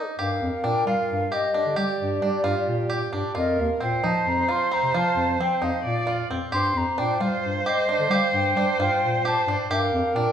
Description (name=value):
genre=contemporary instrumental, chamber music in an uneven meter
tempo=265 BPM (eighths)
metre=7/8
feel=straight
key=unclear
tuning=A4 = 440 Hz
part: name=mellow hollow jazz flute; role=melody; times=0.0-10.3 s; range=D5 to C6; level=-26 LUFS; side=left 2 dB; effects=none
part: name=bluegrass banjo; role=arpeggios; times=0.0-10.3 s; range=C4 to G4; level=-28 LUFS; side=right 2 dB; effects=none
part: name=dark viola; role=second line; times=0.2-10.3 s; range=G4 to D5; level=-27 LUFS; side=right 4 dB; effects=none
part: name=dark bass clarinet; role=bass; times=0.2-10.3 s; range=Eb2 to G3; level=-28 LUFS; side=left 2 dB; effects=none
room=moderate concert hall reverb, RT60 2.2 s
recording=minimal, uncompressed stereo recording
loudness=-21 LUFS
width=side -8 dB against mid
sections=0.2-10.3 A section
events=break 0.0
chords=0.2 Gm7; 3.4 F7sus4; 6.5 Gm7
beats=| 0.18 0.41 0.64 0.86 1.09 1.32 1.55 | 1.77 2.00 2.23 2.45 2.68 2.91 3.13 | 3.36 3.59 3.81 4.04 4.27 4.49 4.72 | 4.95 5.17 5.40 5.62 5.85 6.08 6.30 | 6.53 6.76 6.98 7.21 7.43 7.66 7.89 | 8.11 8.34 8.57 8.79 9.02 9.24 9.47 | 9.70 9.92 10.15